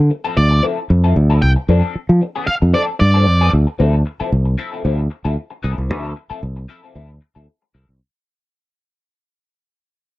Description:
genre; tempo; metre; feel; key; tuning
funk; 114 BPM; 4/4; straight; D minor; A4 = 440 Hz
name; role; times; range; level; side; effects
fingered electric bass; bass; 0.0-8.0 s; C2 to F3; -13 LUFS; equal; tube saturation
electric guitar at the edge of break-up; accompaniment; 0.1-7.9 s; F3 to A4; -24 LUFS; left 4 dB; wah, lush chorus
octave-fuzz lead guitar; melody; 0.4-3.5 s; D5 to G5; -18 LUFS; right 1 dB; distortion
room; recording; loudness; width
little or no reverb; dry, close 1970s-style studio recording; -14 LUFS; side -18 dB against mid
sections
0.0-3.8 A section; 3.8-8.0 B section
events
fade-out 3.8-8.0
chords
0.0 Dm9; 1.7 F6; 3.8 Dm9

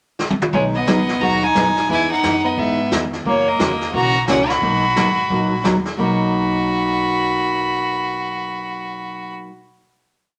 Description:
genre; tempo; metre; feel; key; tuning
country, western swing; 176 BPM; 4/4; swing 62% on 8ths; B major; A4 = 441 Hz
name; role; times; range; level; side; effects
vintage brush drum kit; drums; 0.2-6.2 s; brushed snare drum, hi-hat, kick drum, snare drum, toms; -27 LUFS; equal; none
bright fiddle; melody; 0.5-9.3 s; C#5 to B5; -24 LUFS; equal; none
clear fiddle; second line; 0.5-9.3 s; G#3 to F#4; -24 LUFS; equal; none
picked steel-string acoustic guitar; accompaniment; 0.5-9.5 s; B2 to G#4; -24 LUFS; equal; none
upright bass; bass; 0.5-9.3 s; G#1 to G#2; -33 LUFS; equal; none
room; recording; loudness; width
wet club reverb, RT60 0.9 s; none; -18 LUFS; mono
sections
0.0-0.5 pickup bar; 0.5-6.0 A section; 6.0-8.7 final chord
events
drum fill 0.2-0.5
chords
0.0 N.C.; 0.5 B6; 1.9 Emaj7; 3.3 F#7; 4.6 Bmaj7

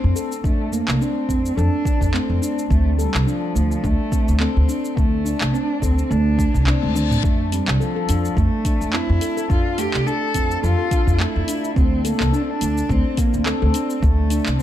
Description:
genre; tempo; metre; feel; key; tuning
organic downtempo; 106 BPM; 4/4; swing 55% on 16ths; D minor; A4 = 440 Hz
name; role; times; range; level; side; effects
dark cello; melody; 0.0-14.6 s; F3 to A4; -24 LUFS; left 1 dB; ping-pong delay
handpan; arpeggios; 0.0-14.6 s; A3 to A4; -25 LUFS; equal; digital delay
upright bass; bass; 0.0-14.5 s; C2 to F2; -19 LUFS; equal; none
afro-pop drum kit; drums; 0.2-14.6 s; handclaps, hi-hat, shaker, toms; -28 LUFS; equal; none
electronic kick drum; drums; 0.4-14.2 s; none; -20 LUFS; equal; none
reverse cymbal; sound effects; 6.5-7.2 s; none; -33 LUFS; left 7 dB; none
room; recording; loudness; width
light reverb; dark, warm production; -17 LUFS; side -12 dB against mid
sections
0.0-14.6 A section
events
reverse cymbal 6.5-7.2; drum fill 6.8-7.2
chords
0.0 F; 2.7 D7(no3); 7.2 Fmaj7; 11.8 D7(no3)

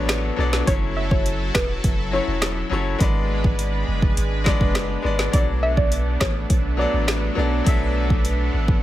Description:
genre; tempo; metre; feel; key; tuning
dancehall; 103 BPM; 4/4; straight; unclear; A4 = 436 Hz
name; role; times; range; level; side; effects
bright grand piano; accompaniment; 0.0-8.8 s; F#3 to E5; -26 LUFS; left 4 dB; none
lush unison pad; sustained chords; 0.0-8.8 s; F#3 to B4; -29 LUFS; right 2 dB; chorus, sidechain pumping
punchy sub bass; bass; 0.0-8.8 s; E1 to B1; -24 LUFS; equal; none
afro-pop drum kit; drums; 0.1-8.8 s; hi-hat, kick drum, rim click, snare drum; -21 LUFS; equal; overdrive
soft round pluck; melody; 0.7-6.9 s; B4 to E5; -27 LUFS; equal; chorus, tape echo
room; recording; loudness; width
digital ambience; none; -18 LUFS; side -14 dB against mid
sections
0.0-8.8 A section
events
none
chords
0.0 Bm7; 0.7 F#m7; 3.0 G#dim; 5.3 Bm7

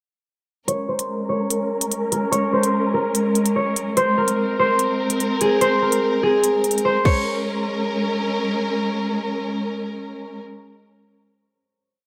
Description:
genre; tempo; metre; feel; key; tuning
hip hop, drill; 146 BPM; 4/4; half-time; Bb minor; A4 = 439 Hz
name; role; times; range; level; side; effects
concert harp; melody; 0.7-9.0 s; Ab4 to Db5; -23 LUFS; equal; low-pass filter
warm symphonic string section; sustained chords; 0.7-10.4 s; Ab3 to Bb4; -25 LUFS; equal; low-pass filter
drill drum kit; drums; 0.7-7.1 s; crash cymbal, hi-hat, kick drum; -25 LUFS; equal; none
room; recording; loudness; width
light reverb; none; -21 LUFS; mono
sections
0.7-7.3 breakdown; 7.3-10.5 final hit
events
filter sweep 0.7-7.3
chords
0.7 Bbm7; 4.0 Abadd9; 7.1 Bbm7

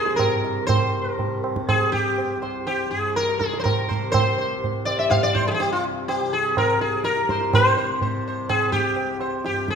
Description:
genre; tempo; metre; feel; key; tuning
indian classical, Hindustani; 123 BPM; 7/4; straight; unclear; A4 = 440 Hz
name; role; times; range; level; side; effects
sitar; melody; 0.0-9.8 s; F4 to F5; -22 LUFS; equal; none
tanpura; drone; 0.0-9.8 s; C2 to C3; -30 LUFS; left 2 dB; none
tabla; percussion; 0.1-9.8 s; none; -25 LUFS; right 3 dB; none
room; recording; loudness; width
wet recital hall reverb, RT60 1.4 s; minimal, uncompressed stereo recording, faint mains hum; -20 LUFS; side -6 dB against mid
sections
0.7-9.8 A section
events
speeding up 0.0-9.8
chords
none

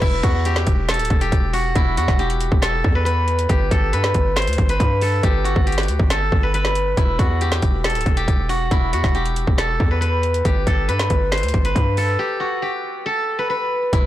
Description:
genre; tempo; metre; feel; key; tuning
hip hop, trap; 138 BPM; 4/4; half-time; E minor; A4 = 440 Hz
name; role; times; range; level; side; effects
steel-string zither; melody; 0.0-14.1 s; E4 to C5; -21 LUFS; left 1 dB; low-pass filter, ping-pong delay
hard-hitting 808-style bass; bass; 0.0-14.1 s; D1 to G2; -21 LUFS; equal; none
trap drum kit; drums; 0.0-14.0 s; crash cymbal, hi-hat, kick drum, snare drum; -20 LUFS; equal; none
room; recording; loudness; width
little or no reverb; blown-out, overdriven recording, overdrive; -16 LUFS; side -14 dB against mid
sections
0.0-7.0 A section; 7.0-14.1 B section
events
break 12.2-13.9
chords
0.0 Em; 3.5 G; 7.0 Em; 10.5 G

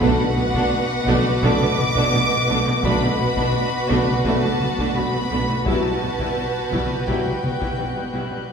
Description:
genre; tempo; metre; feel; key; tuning
cinematic, suspense film score; 85 BPM; 4/4; straight; B minor; A4 = 440 Hz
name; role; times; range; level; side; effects
warm symphonic violin section; melody; 0.0-8.5 s; F#5 to D6; -26 LUFS; left 2 dB; none
rich chamber violin section; second line; 0.0-8.5 s; F#4 to B4; -26 LUFS; right 2 dB; none
rich symphonic viola section; accompaniment; 0.0-8.4 s; G3 to E4; -26 LUFS; right 1 dB; none
mellow French horn section; sustained chords; 0.0-7.3 s; D3 to E4; -29 LUFS; left 2 dB; none
rich symphonic cello section; riff; 0.0-8.4 s; B2 to B3; -27 LUFS; right 1 dB; none
clear symphonic cello section; bass; 0.0-8.4 s; B2; -27 LUFS; right 1 dB; none
rich symphonic double bass section; bass; 0.0-8.2 s; B1; -28 LUFS; right 1 dB; none
solo taiko drums; drums; 0.0-8.3 s; none; -29 LUFS; left 1 dB; none
large celesta; texture; 0.0-8.5 s; B4 to B5; -34 LUFS; left 6 dB; none
warm symphonic violin section; texture; 0.0-8.5 s; D#5 to G6; -34 LUFS; left 6 dB; none
room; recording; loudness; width
wet recital hall reverb, RT60 1.6 s; recorded in a church or concert hall; -18 LUFS; side -6 dB against mid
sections
0.0-8.5 A section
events
none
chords
0.0 Bm7; 5.7 Emadd9/B

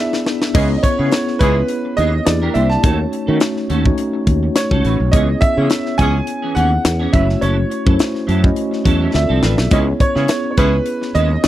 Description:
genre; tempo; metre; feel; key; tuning
polished 1980s jazz-funk pop; 105 BPM; 4/4; swing 54% on 16ths; C# minor; A4 = 440 Hz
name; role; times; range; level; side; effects
clear grand piano; melody; 0.0-11.5 s; B4 to A5; -21 LUFS; right 3 dB; none
mellow tine electric piano; accompaniment; 0.0-11.5 s; A3 to D#5; -20 LUFS; left 2 dB; fast stereo tremolo, wide subtle chorus
tight funk drum kit; drums; 0.1-11.5 s; crash cymbal, hi-hat, kick drum, snare drum; -17 LUFS; left 1 dB; none
mellow horn section; second line; 0.5-1.6, 5.1-6.2, 9.7-10.8 s; G#3 to G#4; -25 LUFS; left 1 dB; none
clean electric guitar; riff; 0.5-11.5 s; E3 to B#4; -24 LUFS; right 4 dB; ensemble chorus
sustaining fretless electric bass; bass; 0.5-11.5 s; F#1 to D#3; -17 LUFS; equal; wide subtle chorus
room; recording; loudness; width
little or no reverb; dry, close 1970s-style studio recording; -13 LUFS; side -13 dB against mid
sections
0.5-11.5 A section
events
drum fill 0.0-0.5, 9.1-9.7; band accent 0.0-0.5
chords
0.0 E7; 0.5 C#m7; 2.3 Em7b5; 2.8 D#m7b5; 5.1 C#m7; 7.1 F#m7; 9.1 Dm7; 9.7 C#m7

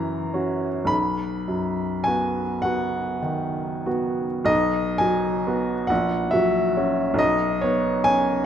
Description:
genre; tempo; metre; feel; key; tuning
classical, romantic nocturne for solo piano; 29-49 BPM (dotted quarters); 6/8; rubato; B major; A4 = 438 Hz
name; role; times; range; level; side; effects
clear baby grand piano; solo; 0.0-8.5 s; A#1 to B5; -21 LUFS; equal; none
room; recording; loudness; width
moderate concert hall reverb, RT60 2.1 s; dark, warm production; -21 LUFS; side -9 dB against mid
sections
0.0-4.5 A section; 4.5-8.5 B section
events
none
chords
0.0 F#7; 0.9 B; 5.9 F#7/A#; 7.2 B5

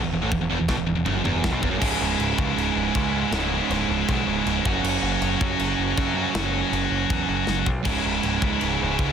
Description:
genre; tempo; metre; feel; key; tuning
heavy metal; 159 BPM; 4/4; straight; C# minor; A4 = 440 Hz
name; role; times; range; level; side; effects
distorted electric guitar; riff; 0.0-9.1 s; C#2 to F#3; -26 LUFS; right 11 dB; overdrive
high-gain distorted guitar; riff; 0.0-9.1 s; E2 to F#4; -26 LUFS; left 11 dB; distortion
growling picked electric bass; bass; 0.0-9.1 s; C#1 to F#2; -28 LUFS; left 1 dB; overdrive
tight metal drum kit; drums; 0.3-9.1 s; china cymbal, crash cymbal, kick drum, snare drum, toms; -28 LUFS; equal; none
room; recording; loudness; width
little or no reverb; dense, heavily limited modern master; -21 LUFS; side -8 dB against mid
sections
0.0-1.8 A section; 1.8-9.1 B section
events
drum fill 0.3-1.8, 7.5-7.9; half time 1.8-9.1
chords
0.0 E5; 1.8 C#m; 4.6 F#5; 7.9 C#m

